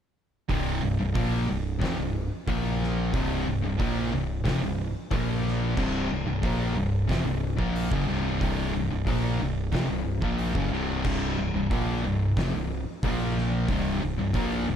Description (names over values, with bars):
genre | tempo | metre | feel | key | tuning
stoner and doom metal | 91 BPM | 4/4 | straight | unclear | A4 = 441 Hz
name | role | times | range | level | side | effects
distorted electric guitar | riff | 0.5-14.8 s | C2 to Bb3 | -33 LUFS | equal | overdrive
thick fuzz guitar | riff | 0.5-14.8 s | C2 to Bb3 | -30 LUFS | left 8 dB | distortion
thick fuzz guitar | riff | 0.5-14.8 s | C2 to Bb3 | -31 LUFS | right 7 dB | distortion
growling picked electric bass | bass | 0.5-14.8 s | C1 to Bb1 | -31 LUFS | equal | overdrive
oversized low-tuned drum kit | drums | 0.5-14.5 s | crash cymbal, hi-hat, kick drum, snare drum | -32 LUFS | equal | none
room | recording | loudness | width
light reverb | dark, warm production | -24 LUFS | side -8 dB against mid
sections
0.5-14.8 A section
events
none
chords
0.5 C5; 2.5 Bb5; 3.1 C5; 5.1 Bb5; 5.8 C5; 13.0 Bb5; 13.7 C5